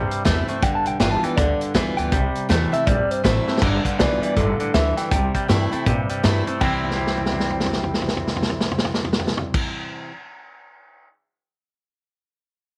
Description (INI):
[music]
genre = rockabilly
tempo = 160 BPM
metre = 4/4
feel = swing 62% on 8ths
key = C major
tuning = A4 = 440 Hz
[part]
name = picked steel-string acoustic guitar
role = accompaniment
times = 0.0-10.1 s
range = G2 to F4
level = -30 LUFS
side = equal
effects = none
[part]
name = twangy electric guitar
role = riff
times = 0.0-10.1 s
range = G2 to E4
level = -29 LUFS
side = equal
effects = subtle chorus
[part]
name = upright bass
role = bass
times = 0.0-9.6 s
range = G1 to Bb2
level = -27 LUFS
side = equal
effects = none
[part]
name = vintage drum kit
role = drums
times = 0.1-11.1 s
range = crash cymbal, hi-hat, kick drum, snare drum, toms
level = -26 LUFS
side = equal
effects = none
[part]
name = electric guitar through a small old amp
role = melody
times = 0.6-9.6 s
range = A4 to A5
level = -28 LUFS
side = equal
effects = tape echo
[sound]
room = small room reverb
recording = none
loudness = -21 LUFS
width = mono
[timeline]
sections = 0.0-3.6 A section; 3.6-6.6 B section; 6.6-9.6 C section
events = drum fill 3.4, 6.8-9.5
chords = 0.0 C; 0.6 G7; 2.1 C; 3.6 G7; 5.1 C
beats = 0.25 | 0.63 1.00 1.38 1.75 | 2.12 2.50 2.87 3.24 | 3.62 3.99 4.37 4.74 | 5.11 5.49 5.86 6.24 | 6.61 6.99 7.36 7.74 | 8.11 8.49 8.86 9.24